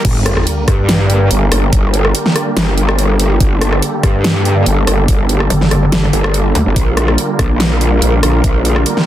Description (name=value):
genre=heavy wobble dubstep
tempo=143 BPM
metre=4/4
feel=half-time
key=G minor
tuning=A4 = 439 Hz
part: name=supersaw chords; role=sustained chords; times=0.0-9.1 s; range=D3 to Bb4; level=-18 LUFS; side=right 1 dB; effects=sidechain pumping, low-pass filter
part: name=growl bass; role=bass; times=0.0-8.8 s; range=G1 to G2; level=-13 LUFS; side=equal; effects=chorus, overdrive
part: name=dubstep drum kit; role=drums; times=0.0-9.1 s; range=crash cymbal, hi-hat, rim click, snare drum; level=-17 LUFS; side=equal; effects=overdrive
part: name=electronic kick drum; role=drums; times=0.0-8.5 s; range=none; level=-14 LUFS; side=equal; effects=overdrive
part: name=sub drop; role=sound effects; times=0.0-1.7 s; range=none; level=-21 LUFS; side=equal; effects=none
part: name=metallic wobble bass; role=bass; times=5.5-6.6 s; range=G1 to D2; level=-12 LUFS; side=equal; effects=distortion, chorus, overdrive
room=little or no reverb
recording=dense, heavily limited modern master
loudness=-10 LUFS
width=side -12 dB against mid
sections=0.0-9.1 A section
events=drop 0.0-9.1; impact 0.0-1.7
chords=0.0 Gm; 6.8 Bb6